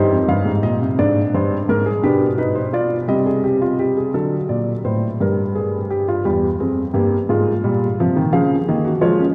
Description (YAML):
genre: classical, baroque-style 4-part fugue for grand piano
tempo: 57 BPM (dotted quarters)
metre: 6/8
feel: straight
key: F minor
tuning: A4 = 443 Hz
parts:
  - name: warm baby grand piano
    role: solo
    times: 0.0-9.3 s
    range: E2 to F5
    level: -18 LUFS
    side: equal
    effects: none
room: wet cathedral reverb, RT60 5.3 s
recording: recorded in a church or concert hall, vinyl crackle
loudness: -18 LUFS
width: mono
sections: 0.0-4.1 A section; 4.1-9.3 B section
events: none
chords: 0.0 Cm; 1.0 Bb13; 2.0 G7/B; 3.1 Cm; 4.1 D7; 5.2 Gm; 6.3 C7/E; 7.3 Fm/Ab; 8.3 Bbm/Db